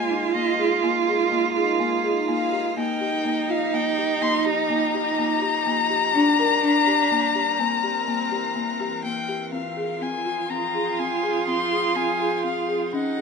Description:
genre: contemporary instrumental, chamber music in an uneven meter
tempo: 124 BPM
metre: 7/4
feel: straight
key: F minor from 9.5 s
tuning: A4 = 440 Hz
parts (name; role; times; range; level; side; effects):
- dark violin; melody; 0.0-13.2 s; Eb5 to C6; -24 LUFS; left 7 dB; none
- dark cello; second line; 0.0-13.2 s; C4 to F4; -25 LUFS; right 7 dB; none
- icy glass pad; sustained chords; 0.0-13.2 s; E3 to Bb4; -32 LUFS; right 1 dB; chorus, built-in reverb
- folk marimba with medium mallets; arpeggios; 0.1-13.2 s; Bb3 to Bb4; -27 LUFS; left 3 dB; none
room: moderate studio ambience, RT60 0.5 s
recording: nothing above 10.6 kHz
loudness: -20 LUFS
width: side -5 dB against mid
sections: 0.0-9.5 A section; 9.5-13.2 B section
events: none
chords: 0.0 Absus2; 2.8 Ebadd9; 6.2 Gm; 7.6 C7; 9.5 Fm

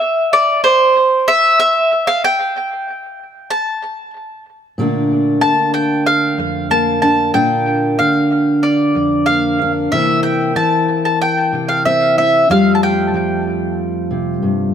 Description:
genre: folk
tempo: 94 BPM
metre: 4/4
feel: straight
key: unclear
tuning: A4 = 439 Hz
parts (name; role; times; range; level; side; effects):
- mandolin; melody; 0.0-13.4 s; C5 to A5; -14 LUFS; equal; analog delay
- fingerpicked steel-string acoustic guitar; accompaniment; 4.8-14.7 s; F2 to F4; -15 LUFS; equal; analog delay
room: moderate echo chamber reverb, RT60 1.5 s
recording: echo-heavy mix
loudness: -12 LUFS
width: side -8 dB against mid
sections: 0.0-4.8 A section; 4.8-14.7 B section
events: none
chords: 0.0 N.C.; 4.8 Bbmaj7; 9.9 C7; 12.5 Fadd9

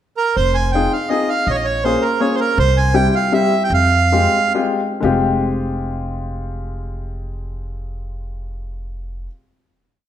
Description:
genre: musette waltz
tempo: 123-164 BPM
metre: 3/4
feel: straight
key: F minor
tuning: A4 = 440 Hz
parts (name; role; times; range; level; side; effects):
- accordion; melody; 0.2-4.5 s; Bb4 to Ab5; -17 LUFS; right 4 dB; none
- upright bass; bass; 0.4-9.3 s; F1 to F2; -21 LUFS; equal; none
- clear upright piano; accompaniment; 0.7-9.3 s; G3 to Ab4; -19 LUFS; left 4 dB; none
room: wet recital hall reverb, RT60 1.5 s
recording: none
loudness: -15 LUFS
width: side -10 dB against mid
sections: 0.0-0.4 pickup bar; 0.4-5.0 A section; 5.0-7.9 final chord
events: slowing down 2.6-5.0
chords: 0.4 Fm7; 1.5 Bbm7; 2.6 C; 3.7 Fmadd9

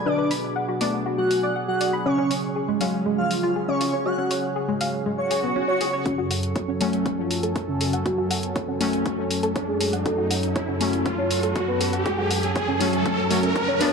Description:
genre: melodic techno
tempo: 120 BPM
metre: 4/4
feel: straight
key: F# minor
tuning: A4 = 440 Hz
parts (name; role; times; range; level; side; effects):
- sweeping resonant pad; sustained chords; 0.0-13.9 s; F#2 to A4; -29 LUFS; right 2 dB; chorus, sidechain pumping
- synth brass stab; stabs; 0.0-13.9 s; F#3 to D4; -28 LUFS; left 2 dB; chorus, sidechain pumping, ping-pong delay
- wide unison lead; melody; 0.1-13.9 s; C#4 to C#5; -27 LUFS; equal; cassette tape, sidechain pumping, dub echo
- airy dreamy lead; second line; 0.1-5.9 s; C#5 to C#6; -31 LUFS; equal; chorus, cassette tape, sidechain pumping, ping-pong delay
- soft round pluck; arpeggios; 0.1-13.9 s; G#3 to D6; -29 LUFS; right 1 dB; chorus, sidechain pumping, ping-pong delay
- electronic hi-hat; drums; 0.3-13.9 s; none; -30 LUFS; left 2 dB; none
- swell and riser; sound effects; 5.3-13.9 s; none; -28 LUFS; equal; none
- electronic kick drum; drums; 6.1-13.7 s; none; -30 LUFS; equal; high-pass filter on kick, high-pass filter on room
room: wet scoring stage reverb, RT60 2.0 s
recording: dark, warm production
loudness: -21 LUFS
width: side -5 dB against mid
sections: 0.0-6.1 A section; 6.1-13.9 B section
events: swell 5.3-6.1; build-up 6.1-13.9; riser 6.1-13.9; filter sweep on analog synth lead 6.1-13.9; filter sweep on synth stab 6.1-13.9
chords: 0.0 Bm7; 2.1 C#sus4; 6.1 F#m

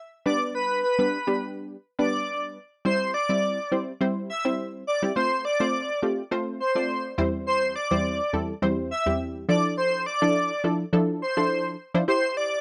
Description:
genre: pop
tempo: 104 BPM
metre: 4/4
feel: straight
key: C major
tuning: A4 = 440 Hz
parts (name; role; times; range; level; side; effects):
- airy dreamy lead; melody; 0.3-12.6 s; B4 to E5; -27 LUFS; equal; chorus, slapback echo
- punchy chord stab; accompaniment; 0.3-12.6 s; E2 to D5; -28 LUFS; equal; chorus
room: light reverb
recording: dry, close 1970s-style studio recording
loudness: -26 LUFS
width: mono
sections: 0.0-2.9 A section; 2.9-12.1 B section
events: none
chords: 0.3 G; 2.9 C; 5.2 F; 7.2 C/E; 9.5 Dmadd9; 12.1 C

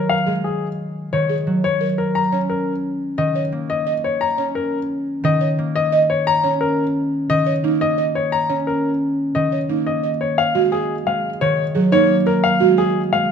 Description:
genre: classical, minimalist pattern music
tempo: 175 BPM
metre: 6/4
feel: straight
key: Eb minor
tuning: A4 = 440 Hz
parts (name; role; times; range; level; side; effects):
- clear baby grand piano; melody; 0.0-13.3 s; Ab4 to Bb5; -20 LUFS; left 6 dB; none
- concert harp; accompaniment; 0.0-13.3 s; Eb3 to Db4; -21 LUFS; right 1 dB; none
- buzzing marimba with soft mallets; arpeggios; 0.3-13.0 s; Eb4 to Eb5; -21 LUFS; right 9 dB; none
room: moderate scoring stage reverb, RT60 1.8 s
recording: close, detailed microphones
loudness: -17 LUFS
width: side -7 dB against mid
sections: 0.0-10.4 A section; 10.4-13.3 A section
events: none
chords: 0.0 Ebm11; 2.2 Bbm/Eb; 10.4 Ebm11

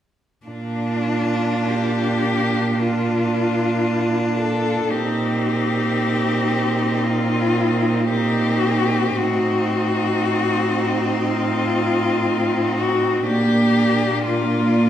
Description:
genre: classical, lyrical piece for cello ensemble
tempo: 47-61 BPM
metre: 4/4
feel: rubato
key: Bb major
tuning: A4 = 440 Hz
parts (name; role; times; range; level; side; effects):
- rich cello; melody; 0.5-14.9 s; D4 to A4; -22 LUFS; left 4 dB; none
- rich cello; second line; 0.5-14.9 s; D4 to F4; -25 LUFS; right 3 dB; none
- rich cello; accompaniment; 0.5-14.9 s; Bb3 to D4; -24 LUFS; left 2 dB; none
- clear cello; bass; 0.5-14.9 s; A2 to Bb2; -22 LUFS; right 2 dB; none
room: wet recital hall reverb, RT60 1.6 s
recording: recorded in a church or concert hall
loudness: -17 LUFS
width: side -10 dB against mid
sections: 0.5-14.9 A section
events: none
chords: 0.5 Bb; 4.9 Cm7/Bb; 9.2 Adim7; 13.3 Bb

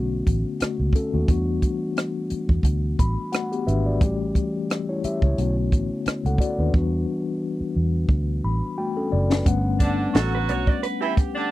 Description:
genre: R&B, neo-soul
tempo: 88 BPM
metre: 4/4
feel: swing 55% on 16ths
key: unclear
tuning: A4 = 440 Hz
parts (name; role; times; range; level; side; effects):
- mellow tine electric piano; accompaniment; 0.0-11.5 s; D3 to B5; -26 LUFS; left 3 dB; medium stereo tremolo
- vintage muted fingered electric bass; bass; 0.0-10.7 s; F#1 to E2; -23 LUFS; right 1 dB; none
- compact cocktail drum kit; drums; 0.3-11.3 s; hi-hat, kick drum, rim click, snare drum; -21 LUFS; equal; none
- clear saxophone section; stabs; 9.8-11.5 s; D3 to F#4; -26 LUFS; right 5 dB; none
- electric guitar through a small old amp; second line; 10.2-11.5 s; G4 to D5; -30 LUFS; right 4 dB; none
room: little or no reverb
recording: dry, close 1970s-style studio recording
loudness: -21 LUFS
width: side -16 dB against mid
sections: 0.0-9.5 A section; 9.5-11.5 B section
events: tine electric piano fill 2.6-4.0, 8.1-9.5; drum fill 6.7-9.5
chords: 0.0 Bm9; 1.3 Em9; 4.0 A7; 5.4 Bm9; 6.7 Em9; 9.5 Gmaj9#11

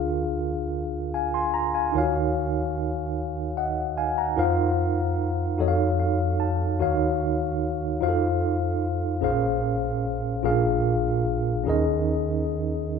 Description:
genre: gospel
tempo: 49 BPM (dotted quarters)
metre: 6/8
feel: straight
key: Bb minor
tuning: A4 = 442 Hz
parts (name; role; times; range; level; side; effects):
- mellow tine electric piano; solo; 0.0-13.0 s; Bb1 to C6; -22 LUFS; equal; medium stereo tremolo
room: moderate large studio reverb, RT60 1.2 s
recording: band playing live in one room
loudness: -22 LUFS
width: side -6 dB against mid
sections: 0.0-13.0 A section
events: tine electric piano fill 5.6-6.8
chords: 0.0 Bb7/D; 1.9 Ebm9; 4.4 F7sus4; 5.6 F7b9b13; 6.8 Ebm9; 8.0 F7; 9.2 Bbm9; 10.4 Bb7; 11.7 Eb7sus4

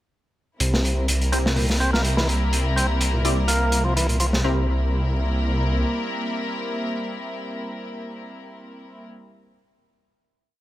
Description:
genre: breakbeat, breaks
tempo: 125 BPM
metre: 4/4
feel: swing 54% on 16ths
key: unclear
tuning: A4 = 440 Hz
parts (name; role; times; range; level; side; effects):
- warm symphonic string section; sustained chords; 0.6-9.0 s; G3 to Bb4; -28 LUFS; equal; vintage 12-bit sampler grit
- overdriven tonewheel organ; riff; 0.6-4.7 s; Bb2 to C4; -26 LUFS; equal; tube saturation, vintage 12-bit sampler grit, low-pass filter, dub echo
- detuned saw bass; bass; 0.6-5.8 s; C2; -22 LUFS; equal; none
- crunchy breakbeat drum kit; drums; 0.6-4.4 s; hi-hat, snare drum; -25 LUFS; equal; none
- orchestra-hit-like synth stab; stabs; 1.3-9.3 s; C4 to D5; -30 LUFS; left 1 dB; built-in reverb, dub echo
room: small room ambience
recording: none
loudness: -20 LUFS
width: side -15 dB against mid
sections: 0.6-4.4 breakdown; 4.4-8.3 final chord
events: none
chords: 0.6 C7

